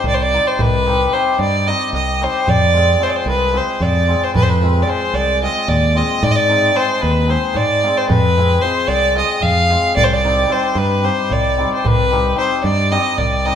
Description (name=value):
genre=balkan folk, Balkan wedding band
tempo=224 BPM (eighths)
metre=7/8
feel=straight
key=unclear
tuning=A4 = 440 Hz
part: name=warm fiddle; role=melody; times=0.0-13.6 s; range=B4 to F5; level=-16 LUFS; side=equal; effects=none
part: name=hammered dulcimer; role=accompaniment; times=0.0-13.6 s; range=G3 to Ab4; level=-22 LUFS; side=left 3 dB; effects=none
part: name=modern bright fingered electric bass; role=bass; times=0.0-13.5 s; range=C2 to Ab2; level=-19 LUFS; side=right 1 dB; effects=none
part: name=darbuka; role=percussion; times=0.0-13.6 s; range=none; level=-22 LUFS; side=equal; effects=none
room=wet stone room reverb, RT60 1.3 s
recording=band playing live in one room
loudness=-13 LUFS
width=side -8 dB against mid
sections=0.0-10.0 A section; 10.0-13.6 A section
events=none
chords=0.0 Cm; 2.5 Fm; 6.2 Ab; 8.1 Fm; 10.0 Cm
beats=0.06 0.32 | 0.59 0.86 1.13 1.40 1.67 1.94 2.20 | 2.47 2.74 3.01 3.28 3.55 3.81 4.08 | 4.35 4.62 4.89 5.16 5.42 5.69 5.96 | 6.23 6.50 6.76 7.03 7.30 7.57 7.84 | 8.11 8.37 8.64 8.91 9.18 9.44 9.71 | 9.98 10.24 10.51 10.78 11.05 11.31 11.58 | 11.85 12.12 12.38 12.65 12.92 13.18 13.45